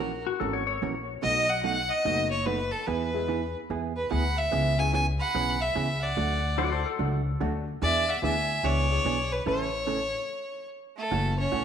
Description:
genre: country, western swing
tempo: 146 BPM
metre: 4/4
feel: swing 64% on 8ths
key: unclear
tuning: A4 = 440 Hz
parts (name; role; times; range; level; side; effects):
- clear fiddle; melody; 0.0-11.6 s; A4 to G#5; -28 LUFS; left 2 dB; none
- clear fiddle; second line; 0.0-11.6 s; A3 to B5; -34 LUFS; right 5 dB; none
- clear upright piano; accompaniment; 0.0-4.9, 7.4-9.7 s; G#3 to A4; -38 LUFS; left 10 dB; none
- vintage hollow-body jazz guitar; accompaniment; 0.0-11.6 s; B2 to A#4; -32 LUFS; right 8 dB; none
- upright bass; bass; 0.0-11.6 s; F#1 to E2; -30 LUFS; left 1 dB; none
- clean lap steel guitar; second line; 0.3-1.1, 6.6-7.1 s; F#4 to D5; -31 LUFS; left 8 dB; none
room: wet echo chamber reverb, RT60 1.7 s, small room ambience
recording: 1960s-style stereo with parts hard left and right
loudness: -25 LUFS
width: side -8 dB against mid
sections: 0.0-11.1 A section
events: stop 10.3-11.1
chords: 0.0 F#7/A#; 1.2 B7; 2.9 E; 4.5 C#m7; 6.2 D; 7.8 E7; 9.5 A; 11.1 F#m7

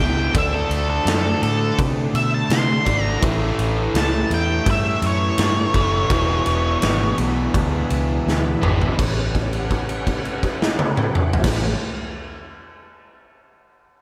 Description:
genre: blues rock power trio and southern rock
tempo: 83 BPM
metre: 4/4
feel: straight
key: A mixolydian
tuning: A4 = 440 Hz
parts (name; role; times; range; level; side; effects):
- octave-fuzz lead guitar; melody; 0.0-7.2 s; A4 to C6; -26 LUFS; equal; distortion
- overdriven tonewheel organ; sustained chords; 0.0-11.8 s; B3 to F#5; -35 LUFS; equal; none
- biting overdriven guitar; riff; 0.0-9.0 s; E2 to D4; -26 LUFS; equal; slapback echo
- vintage muted fingered electric bass; bass; 0.0-11.7 s; E1 to C3; -26 LUFS; equal; none
- big rock drum kit; drums; 0.3-11.6 s; crash cymbal, kick drum, ride cymbal, snare drum, toms; -25 LUFS; equal; none
room: moderate lush hall reverb, RT60 2.9 s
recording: big arena sound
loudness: -20 LUFS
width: mono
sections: 0.0-9.0 A section; 9.0-11.9 B section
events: lead electric guitar solo 0.0-9.0; drum fill 8.3-9.0; held note 9.0-11.4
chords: 0.3 D7; 3.2 A7; 6.1 E7; 9.0 A13

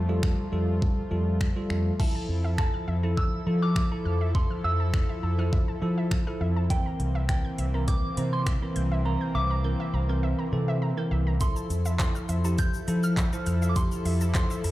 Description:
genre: dance-pop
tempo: 102 BPM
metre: 4/4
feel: straight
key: unclear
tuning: A4 = 438 Hz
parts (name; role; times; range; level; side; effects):
- soft synth bell; melody; 0.0-14.7 s; G5 to G6; -36 LUFS; right 1 dB; chorus, phaser, tape echo
- soft supersaw; sustained chords; 0.0-14.7 s; E3 to A4; -36 LUFS; left 2 dB; sidechain pumping
- vintage muted fingered electric bass; bass; 0.0-14.7 s; C2 to F3; -26 LUFS; equal; sidechain pumping
- bell-like tine electric piano; accompaniment; 0.1-14.7 s; E3 to C5; -32 LUFS; right 1 dB; fast stereo tremolo, sidechain pumping
- pop drum kit; drums; 0.2-14.7 s; crash cymbal, finger snaps, handclaps, hi-hat, kick drum, shaker; -27 LUFS; equal; overdrive
- glassy wavetable pluck; arpeggios; 2.0-14.7 s; E5 to G6; -41 LUFS; equal; chorus, sidechain pumping, tape echo
room: digital ambience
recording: played on a big sound system in a bare room, large studio reverb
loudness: -24 LUFS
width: side -16 dB against mid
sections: 0.0-2.0 A section; 2.0-14.7 B section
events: drums muted 9.1-11.4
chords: 0.0 Fadd9; 2.0 Fmaj7; 6.7 C7; 11.4 Fmaj7

